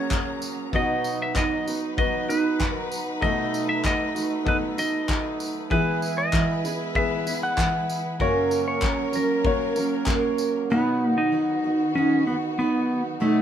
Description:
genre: acoustic pop.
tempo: 96 BPM.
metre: 4/4.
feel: straight.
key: B major.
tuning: A4 = 440 Hz.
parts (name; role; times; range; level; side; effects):
clean lap steel guitar; melody; 0.0-13.4 s; A3 to F#5; -26 LUFS; left 1 dB; none.
bright upright piano; accompaniment; 0.0-10.7 s; A#3 to D#5; -31 LUFS; left 7 dB; none.
picked steel-string acoustic guitar; accompaniment; 0.0-13.4 s; F#2 to A#4; -26 LUFS; right 4 dB; none.
warm studio string section; sustained chords; 0.0-13.4 s; D#3 to A#5; -33 LUFS; left 1 dB; none.
modern studio drum kit; drums; 0.1-10.5 s; handclaps, kick drum, tambourine; -28 LUFS; left 1 dB; none.
room: moderate studio reverb, RT60 0.6 s.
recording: minimal, uncompressed stereo recording.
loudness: -22 LUFS.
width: side -9 dB against mid.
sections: 0.0-10.7 A section; 10.7-13.4 A section.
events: none.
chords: 0.0 F#; 0.7 B; 3.2 B7; 5.7 E; 8.2 F#; 10.7 B.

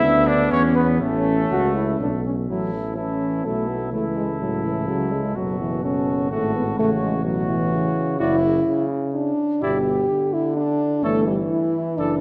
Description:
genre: classical, brass quintet.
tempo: 126 BPM.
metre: 3/4.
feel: straight.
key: A major, D major from 8.2 s.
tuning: A4 = 440 Hz.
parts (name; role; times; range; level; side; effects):
dark trumpet; melody; 0.0-12.2 s; A4 to E5; -30 LUFS; equal; none.
warm trumpet; second line; 0.0-12.2 s; A3 to A4; -32 LUFS; equal; none.
warm French horn; accompaniment; 0.0-12.2 s; E3 to G4; -25 LUFS; equal; none.
warm trombone; accompaniment; 0.0-12.2 s; A2 to F#4; -29 LUFS; equal; none.
warm tuba; bass; 0.0-12.2 s; F#1 to E2; -28 LUFS; equal; none.
room: wet concert hall reverb, RT60 1.9 s.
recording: none.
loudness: -22 LUFS.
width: mono.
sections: 0.0-2.5 A section; 2.5-12.2 B section.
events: none.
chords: 0.0 Bm/D; 0.5 E5; 1.0 A; 3.9 A/C#; 5.4 F#m; 6.8 F#m/A; 8.2 D/F#; 9.6 Em7/G; 11.0 A7(no3)/G.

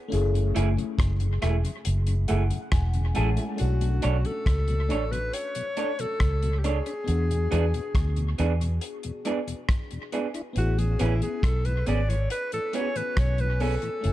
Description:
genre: lovers rock reggae.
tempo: 69 BPM.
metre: 4/4.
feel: straight.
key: B dorian.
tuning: A4 = 442 Hz.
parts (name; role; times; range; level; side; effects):
FM electric piano with soft pad layer; accompaniment; 0.0-14.1 s; G#3 to A5; -35 LUFS; left 4 dB; chorus, phaser, dub echo.
vintage muted fingered electric bass; bass; 0.1-14.1 s; E1 to E2; -24 LUFS; equal; none.
damped 70s drum kit; drums; 0.1-14.1 s; hi-hat, kick drum, rim click; -28 LUFS; equal; dub echo.
mellow tonewheel organ; accompaniment; 0.3-13.9 s; E2 to G#4; -36 LUFS; left 3 dB; slow rotary speaker.
electric guitar through a small old amp; stabs; 0.5-13.7 s; A3 to C#5; -32 LUFS; right 5 dB; none.
warm alto saxophone; melody; 3.6-14.1 s; E4 to D5; -31 LUFS; left 1 dB; dub echo.
room: small room reverb.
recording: dark, warm production.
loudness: -23 LUFS.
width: side -14 dB against mid.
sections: 0.0-3.6 A section; 3.6-14.1 B section.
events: FM electric piano fill 1.9-3.6.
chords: 0.1 F#m9; 3.6 Bm9; 7.1 E7; 10.6 Amaj9.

